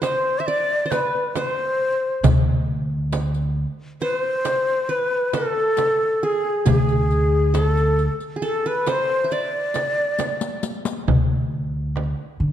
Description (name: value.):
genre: Arabic maqam ensemble.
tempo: 136 BPM (eighths).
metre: 10/8.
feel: straight.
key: unclear.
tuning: A4 = 439 Hz.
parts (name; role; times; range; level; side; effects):
breathy ney; melody; 0.0-10.6 s; G#4 to E5; -21 LUFS; left 1 dB; none.
qanun; second line; 0.0-10.6 s; G#4 to E5; -28 LUFS; right 3 dB; none.
darbuka; percussion; 0.0-12.2 s; none; -24 LUFS; left 3 dB; none.
frame drum; percussion; 0.0-12.2 s; none; -27 LUFS; right 6 dB; none.
riq; percussion; 0.0-11.1 s; none; -32 LUFS; left 6 dB; none.
upright bass; bass; 2.2-12.5 s; D2 to D3; -21 LUFS; equal; none.
room: wet concert hall reverb, RT60 1.7 s.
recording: dark, warm production.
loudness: -19 LUFS.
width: side -10 dB against mid.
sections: 0.0-11.1 A section; 11.1-12.5 B section.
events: drum fill 10.2-11.1.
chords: none.